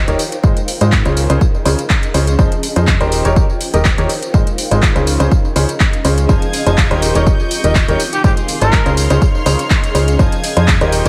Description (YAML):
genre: piano house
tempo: 123 BPM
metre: 4/4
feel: swing 54% on 16ths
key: unclear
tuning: A4 = 440 Hz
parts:
  - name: solid FM bass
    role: bass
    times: 0.0-11.1 s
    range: Eb1 to Ab2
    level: -18 LUFS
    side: equal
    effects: sidechain pumping
  - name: granular cloud pad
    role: texture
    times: 0.0-11.1 s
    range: Db4 to Eb5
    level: -27 LUFS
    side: equal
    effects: built-in reverb, sidechain pumping
  - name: clear upright piano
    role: riff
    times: 0.1-11.1 s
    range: Db3 to Eb5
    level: -21 LUFS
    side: equal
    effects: sidechain pumping, delay
  - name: house drum kit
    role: drums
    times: 0.1-11.1 s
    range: handclaps, hi-hat, tambourine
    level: -23 LUFS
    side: equal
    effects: studio reverb
  - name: electronic kick drum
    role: drums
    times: 0.4-10.8 s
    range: none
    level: -16 LUFS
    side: equal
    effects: studio reverb
  - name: clear studio violin section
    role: sustained chords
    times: 6.3-11.1 s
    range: Ab4 to Ab6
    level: -27 LUFS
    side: equal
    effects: sidechain pumping
  - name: warm trumpet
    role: melody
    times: 8.1-8.9 s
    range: G4 to Bb4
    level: -22 LUFS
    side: equal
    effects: delay
room: light reverb, digital ambience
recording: none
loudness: -14 LUFS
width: mono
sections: 0.0-11.1 A section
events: none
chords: 0.4 Ab6; 1.2 Dbmaj7; 2.4 Fm7; 3.1 Eb7; 4.3 Ab6; 5.1 Dbmaj7; 6.3 Fm7; 7.0 Eb7; 8.2 Ab6; 9.0 Dbmaj7; 10.2 Fm7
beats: | 0.44 0.92 1.41 1.90 | 2.39 2.88 3.36 3.85 | 4.34 4.83 5.31 5.80 | 6.29 6.78 7.26 7.75 | 8.24 8.73 9.22 9.70 | 10.19 10.68